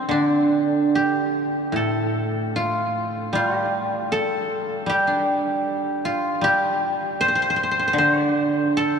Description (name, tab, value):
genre	chinese traditional, Chinese solo plucked strings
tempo	72-80 BPM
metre	4/4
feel	rubato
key	D yu mode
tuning	A4 = 441 Hz
part	guzheng	solo	0.0-9.0 s	A2 to D5	-19 LUFS	right 1 dB	analog delay
room	wet cathedral reverb, RT60 6.0 s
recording	dreamy mix soaked in reverb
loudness	-19 LUFS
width	side -6 dB against mid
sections	0.1-9.0 A section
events	none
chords	none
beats	| 0.12 0.94 1.76 2.56 | 3.34 4.12 4.89 5.66 | 6.43 7.20 7.96 8.74